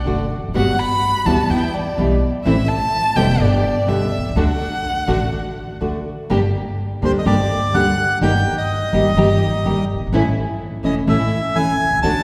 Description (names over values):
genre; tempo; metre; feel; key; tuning
tango; 126 BPM; 4/4; rubato; G harmonic minor from 6.3 s; A4 = 442 Hz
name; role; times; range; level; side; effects
warm violin; second line; 0.0-5.8 s; D5 to B5; -24 LUFS; equal; none
nylon-string guitar; accompaniment; 0.1-12.1 s; B2 to G4; -23 LUFS; equal; none
dark studio string section; stabs; 0.1-12.2 s; G3 to G4; -29 LUFS; equal; none
upright bass; bass; 0.1-12.2 s; E1 to E2; -24 LUFS; equal; none
bandoneon; melody; 7.0-12.2 s; C5 to A5; -23 LUFS; equal; none
room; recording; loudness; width
wet concert hall reverb, RT60 2.5 s; heard from further back in the room; -18 LUFS; mono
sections
0.0-6.3 A section; 6.3-12.2 B section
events
violin solo 0.0-6.3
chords
0.0 D/F#; 0.5 Gmaj7; 1.5 Em; 2.5 Am; 3.4 G; 4.4 D; 6.3 Gm; 8.2 Eb/G; 10.1 A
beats
0.07 | 0.55 1.03 1.50 1.98 | 2.46 2.93 3.40 3.88 | 4.36 4.84 5.32 5.81 | 6.29 6.78 7.26 7.74 | 8.21 8.69 9.17 9.65 | 10.12 10.60 11.07 11.55 | 12.02